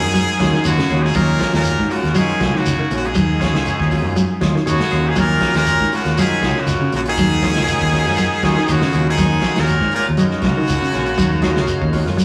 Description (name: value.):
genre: afrobeat.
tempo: 120 BPM.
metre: 4/4.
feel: swing 54% on 16ths.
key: Eb minor.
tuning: A4 = 440 Hz.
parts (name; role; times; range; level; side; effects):
brilliant trumpet; melody; 0.0-12.2 s; Gb4 to Bb4; -24 LUFS; equal; analog delay.
bright baritone saxophone; second line; 0.0-12.2 s; Gb2 to Bb2; -27 LUFS; equal; none.
raspy tenor saxophone; second line; 0.0-12.2 s; Db3 to Gb3; -32 LUFS; equal; none.
percussive tonewheel organ; accompaniment; 0.0-12.1 s; Gb3 to F5; -29 LUFS; equal; overdrive, chorus vibrato, slow rotary speaker.
electric guitar at the edge of break-up; stabs; 0.0-12.2 s; Gb3 to F4; -29 LUFS; equal; none.
fingered electric bass; bass; 0.0-12.2 s; Bb1 to Ab2; -22 LUFS; equal; none.
semi-hollow electric guitar; arpeggios; 0.1-12.2 s; Db3 to Gb3; -22 LUFS; equal; none.
warm soul drum kit; drums; 0.1-12.2 s; hi-hat, kick drum, snare drum; -29 LUFS; equal; none.
shekere; percussion; 0.1-12.2 s; none; -32 LUFS; equal; none.
room: wet stone room reverb, RT60 1.2 s.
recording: rough rehearsal-room recording, warm saturation, studio reverb.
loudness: -17 LUFS.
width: mono.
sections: 0.0-12.2 A section.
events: none.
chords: 0.0 Ebm11.